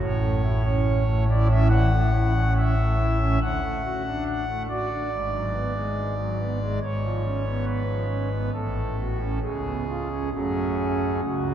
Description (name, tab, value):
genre	classical, chorale-style piece for pipe organ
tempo	70 BPM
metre	4/4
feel	straight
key	F# minor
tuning	A4 = 440 Hz
part	pipe organ, foundations	solo	0.0-11.5 s	G#1 to F#5	-22 LUFS	equal	none
room	wet cathedral reverb, RT60 5.8 s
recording	recorded in a church or concert hall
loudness	-22 LUFS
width	side -10 dB against mid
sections	0.0-11.5 A section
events	none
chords	0.0 A; 3.4 D; 5.1 G#m7b5; 6.8 C#7/G#; 8.5 F#m/A; 9.4 C#7; 10.3 F#m